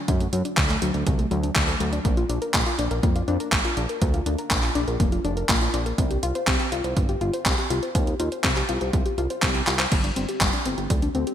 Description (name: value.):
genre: italo disco.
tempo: 122 BPM.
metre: 4/4.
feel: straight.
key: unclear.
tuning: A4 = 439 Hz.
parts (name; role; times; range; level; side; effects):
warbly dusty pluck; arpeggios; 0.0-11.3 s; D3 to C5; -27 LUFS; left 3 dB; chorus, digital delay.
chorused synth bass; bass; 0.1-11.2 s; F1 to F#2; -27 LUFS; equal; digital delay.
electronic kick drum; drums; 0.1-11.0 s; none; -24 LUFS; equal; overdrive.
gated 80s digital drum machine; drums; 0.1-11.3 s; crash cymbal, handclaps, hi-hat; -26 LUFS; equal; gated reverb.
room: moderate lush hall reverb, RT60 1.7 s, digital ambience.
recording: bright 1980s-style digital production.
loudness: -21 LUFS.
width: side -10 dB against mid.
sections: 0.0-11.3 A section.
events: drum fill 9.7.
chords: 0.0 D; 2.0 Bb; 6.0 Cm; 9.9 G5.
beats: | 0.08 0.57 1.07 1.56 | 2.05 2.54 3.03 3.52 | 4.02 4.51 5.00 5.49 | 5.98 6.48 6.97 7.46 | 7.95 8.44 8.94 9.43 | 9.92 10.41 10.90.